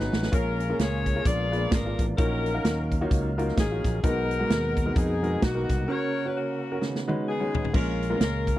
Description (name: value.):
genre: uptempo gospel.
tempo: 130 BPM.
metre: 4/4.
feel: swing 58% on 8ths.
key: unclear.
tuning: A4 = 440 Hz.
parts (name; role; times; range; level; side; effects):
clear saxophone section; melody; 0.0-8.6 s; A#3 to D5; -30 LUFS; left 3 dB; none.
warm concert grand piano; accompaniment; 0.0-8.6 s; A#2 to E#5; -30 LUFS; equal; none.
mellow tonewheel organ; sustained chords; 0.0-7.7 s; B2 to E#5; -35 LUFS; right 3 dB; slow rotary speaker.
fingered electric bass; bass; 0.0-8.6 s; G#1 to E#2; -29 LUFS; equal; none.
natural country drum kit; drums; 0.0-8.6 s; crash cymbal, hi-hat, kick drum, snare drum, toms; -26 LUFS; equal; none.
room: little or no reverb.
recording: dry, close 1970s-style studio recording.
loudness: -23 LUFS.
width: side -14 dB against mid.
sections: 0.0-7.7 A section.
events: drum fill 0.0-0.3, 6.8-7.7; break 5.9-7.7.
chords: 0.3 A#m7; 1.3 A#7b9; 2.2 D#m9/A#; 4.0 G#m9/B; 5.9 F#/C#; 6.8 C#9sus4; 7.7 A#m7.